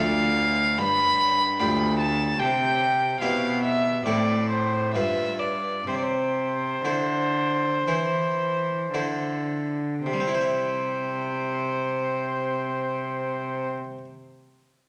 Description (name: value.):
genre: classical, baroque-style sonata movement with continuo.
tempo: 53-76 BPM.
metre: 4/4.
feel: rubato.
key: C major.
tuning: A4 = 441 Hz.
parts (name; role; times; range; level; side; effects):
warm violin; melody; 0.0-13.7 s; C5 to B5; -27 LUFS; equal; none.
harpsichord; accompaniment; 0.0-14.0 s; D2 to E5; -32 LUFS; equal; none.
rich cello; bass; 0.0-13.7 s; D2 to E3; -31 LUFS; equal; none.
room: wet recital hall reverb, RT60 1.4 s.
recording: none.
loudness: -25 LUFS.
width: mono.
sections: 0.0-10.1 A section; 10.1-14.6 B section.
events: slowing down 0.8-10.1.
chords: 0.0 Dm; 0.8 G7; 2.4 C; 4.1 Am; 4.9 G7; 5.9 C.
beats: 0.78 1.59 | 2.39 3.21 4.06 4.94 | 5.87 6.85 7.87 8.94 | 10.06 11.19 12.32 13.46.